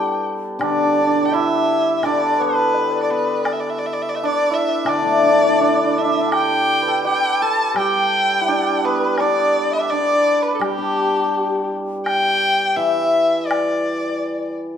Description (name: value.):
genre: chinese traditional, Chinese chamber ensemble.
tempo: 84 BPM.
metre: 2/4.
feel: rubato.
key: G gong mode.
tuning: A4 = 440 Hz.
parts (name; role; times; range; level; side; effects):
rich erhu; melody; 0.0-14.5 s; G4 to A5; -20 LUFS; left 1 dB; none.
hammered dulcimer; second line; 0.0-14.8 s; G3 to B4; -22 LUFS; right 7 dB; none.
xiao; second line; 0.0-14.6 s; G4 to B5; -24 LUFS; left 5 dB; none.
hammered dulcimer; accompaniment; 0.0-14.8 s; D3 to D5; -22 LUFS; left 3 dB; none.
woodblock; percussion; 0.6-13.7 s; none; -28 LUFS; left 2 dB; none.
room: moderate recital hall reverb, RT60 1.6 s.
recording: minimal, uncompressed stereo recording.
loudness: -16 LUFS.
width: side -8 dB against mid.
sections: 0.6-12.1 A section; 12.1-14.8 B section.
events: none.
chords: none.